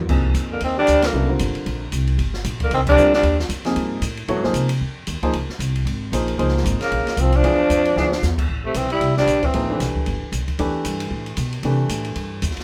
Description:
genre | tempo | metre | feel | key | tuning
modal jazz | 228 BPM | 4/4 | swing 58% on 8ths | A minor from 8.5 s | A4 = 440 Hz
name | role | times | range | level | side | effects
warm baby grand piano | accompaniment | 0.0-12.4 s | C3 to Db5 | -27 LUFS | equal | none
upright bass | bass | 0.0-12.6 s | G1 to C3 | -25 LUFS | equal | none
open jazz drum kit | drums | 0.1-12.6 s | crash cymbal, hi-hat, kick drum, ride cymbal, snare drum | -30 LUFS | equal | none
growling tenor saxophone | melody | 0.5-3.4, 6.8-9.8 s | A3 to E4 | -21 LUFS | equal | none
trombone with cup mute | second line | 0.5-3.4, 6.8-9.8 s | C3 to G3 | -26 LUFS | equal | none
room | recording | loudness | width
moderate club reverb, RT60 0.5 s | none | -20 LUFS | mono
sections
0.1-8.5 A section; 8.5-12.6 B section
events
band accent 1.0, 2.8; drum fill 8.0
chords
0.1 Cm9; 4.3 Bbm9; 7.4 E7b9; 8.5 Am9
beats
| 0.09 0.35 0.62 0.88 | 1.14 1.40 1.67 1.93 | 2.19 2.46 2.72 2.98 | 3.24 3.50 3.77 4.03 | 4.29 4.56 4.82 5.08 | 5.34 5.61 5.87 6.13 | 6.39 6.66 6.92 7.18 | 7.45 7.71 7.97 8.23 | 8.49 8.76 9.02 9.28 | 9.54 9.81 10.07 10.33 | 10.59 10.86 11.12 11.38 | 11.64 11.90 12.16 12.43

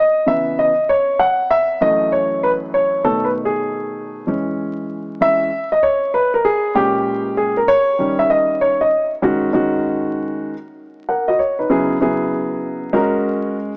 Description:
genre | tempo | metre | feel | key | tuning
hip hop | 97 BPM | 4/4 | swing 64% on 16ths | G# minor | A4 = 440 Hz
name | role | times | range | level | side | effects
dark baby grand piano | solo | 0.0-13.7 s | F#2 to F#5 | -18 LUFS | equal | none
room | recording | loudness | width
moderate plate reverb, RT60 3.6 s | vinyl crackle, small speaker sound | -18 LUFS | mono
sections
0.0-9.2 A section; 9.2-13.8 B section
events
grand piano solo 0.0-9.2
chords
0.0 C#m7; 1.8 F#m7; 3.0 B6; 4.3 E6; 6.8 A#m7; 8.0 D#7; 9.2 G#5; 11.7 C#m7; 12.9 F#add9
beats
0.57 1.19 | 1.81 2.43 3.05 3.66 | 4.28 4.90 5.52 6.14 | 6.76 7.38 7.99 8.61 | 9.23 9.85 10.47 11.09 | 11.71 12.32 12.94 13.56

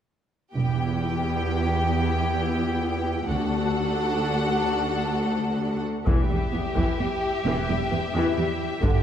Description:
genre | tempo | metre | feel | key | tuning
cinematic, epic orchestral film score | 131 BPM | 3/4 | straight | E minor | A4 = 440 Hz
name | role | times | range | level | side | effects
clear symphonic violin section | second line | 0.5-9.0 s | G4 to G5 | -28 LUFS | left 1 dB | none
clear symphonic double bass section | bass | 0.5-1.0, 3.3-3.7, 6.1-9.0 s | E1 to D2 | -29 LUFS | right 3 dB | none
rich symphonic cello section | bass | 0.5-8.9 s | D2 to G2 | -27 LUFS | equal | none
dark symphonic viola section | accompaniment | 0.6-9.0 s | D3 to F#4 | -29 LUFS | equal | none
rich symphonic violin section | melody | 6.1-9.0 s | E5 | -34 LUFS | left 4 dB | none
solo taiko drums | drums | 6.1-9.0 s | none | -25 LUFS | left 1 dB | none
room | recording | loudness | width
wet scoring stage reverb, RT60 2.1 s | heard from further back in the room | -22 LUFS | side -9 dB against mid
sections
0.6-6.1 A section; 6.1-9.0 B section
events
build-up 6.1-9.0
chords
0.6 Em; 3.3 D; 6.1 Em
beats
| 0.55 1.01 1.47 | 1.93 2.39 2.85 | 3.30 3.76 4.22 | 4.68 5.14 5.60 | 6.07 6.54 7.00 | 7.46 7.92 8.37 | 8.83

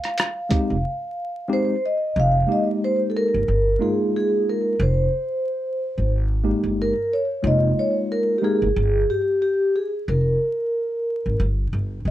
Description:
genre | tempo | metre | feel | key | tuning
hip hop, jazz-hop | 91 BPM | 4/4 | swing 58% on 16ths | F minor | A4 = 439 Hz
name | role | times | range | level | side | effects
vibraphone with soft mallets | melody | 0.0-12.1 s | G4 to F5 | -22 LUFS | equal | slapback echo
lo-fi sampler-style drum kit | drums | 0.0-0.7 s | hi-hat, kick drum, rim click | -22 LUFS | equal | none
mellow tine electric piano | accompaniment | 0.5-8.7 s | Ab3 to Bb4 | -23 LUFS | equal | medium stereo tremolo
upright bass | bass | 0.7-12.1 s | F1 to Ab1 | -22 LUFS | equal | none
room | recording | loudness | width
light reverb | dark, warm production, vinyl crackle | -19 LUFS | side -13 dB against mid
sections
0.0-2.2 A section; 2.2-12.1 B section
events
silent gap 0.8-2.2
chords
0.0 Fm9; 2.2 Fm11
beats
0.18 0.84 1.50 | 2.16 2.82 3.48 4.14 | 4.80 5.46 6.12 6.78 | 7.44 8.10 8.76 9.41 | 10.07 10.73 11.39 12.05

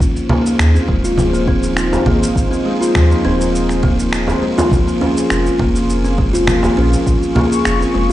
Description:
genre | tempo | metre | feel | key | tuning
organic downtempo | 102 BPM | 4/4 | straight | unclear | A4 = 441 Hz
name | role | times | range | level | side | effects
warm analog pad | sustained chords | 0.0-8.1 s | Bb3 to Db6 | -21 LUFS | left 1 dB | chorus, vintage 12-bit sampler grit, sidechain pumping
warm sub bass | bass | 0.0-8.1 s | Eb1 to Eb2 | -17 LUFS | equal | sidechain pumping
electronic kick drum | drums | 0.0-7.2 s | none | -18 LUFS | equal | none
electronic shaker, congas and finger snaps | drums | 0.0-7.9 s | none | -21 LUFS | right 1 dB | none
buzzing kalimba | arpeggios | 0.3-8.1 s | F3 to F4 | -16 LUFS | equal | low-pass filter, tape echo
frame drum | percussion | 0.3-7.5 s | none | -22 LUFS | right 1 dB | none
room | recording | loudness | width
moderate echo chamber reverb, RT60 1.4 s | played on a big sound system in a bare room, large studio reverb, nothing above 11.0 kHz | -12 LUFS | side -14 dB against mid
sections
0.0-8.1 A section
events
none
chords
0.0 Ab69; 4.7 Bbm9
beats
| 0.01 0.60 1.19 1.78 | 2.36 2.95 3.54 4.13 | 4.72 5.31 5.89 6.48 | 7.07 7.66

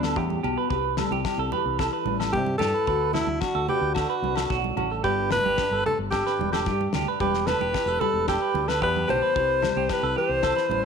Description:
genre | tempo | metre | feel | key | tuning
highlife guitar band | 111 BPM | 4/4 | straight | unclear | A4 = 442 Hz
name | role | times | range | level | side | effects
breathy alto saxophone | melody | 0.0-10.8 s | D4 to C5 | -25 LUFS | left 1 dB | none
nylon-string guitar | accompaniment | 0.0-10.8 s | E2 to A4 | -32 LUFS | left 13 dB | none
clean electric guitar | arpeggios | 0.0-10.8 s | F#4 to B4 | -28 LUFS | right 13 dB | tremolo, slapback echo
fingered electric bass | bass | 0.0-10.8 s | E1 to C3 | -31 LUFS | equal | none
damped 70s drum kit | drums | 0.0-10.6 s | kick drum, snare drum | -32 LUFS | left 4 dB | none
agogo bells | percussion | 0.0-10.6 s | none | -35 LUFS | left 16 dB | none
congas | percussion | 0.3-10.8 s | none | -36 LUFS | right 11 dB | none
room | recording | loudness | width
moderate echo chamber reverb, RT60 1.6 s, studio reverb | 1960s-style stereo with parts hard left and right | -22 LUFS | side -6 dB against mid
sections
0.0-10.8 A section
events
none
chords
0.0 Em7; 0.7 C; 2.9 D; 5.0 Em7; 9.4 C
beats
0.17 | 0.71 1.25 1.79 2.33 | 2.88 3.42 3.96 4.50 | 5.04 5.58 6.12 6.66 | 7.20 7.74 8.28 8.82 | 9.36 9.89 10.43

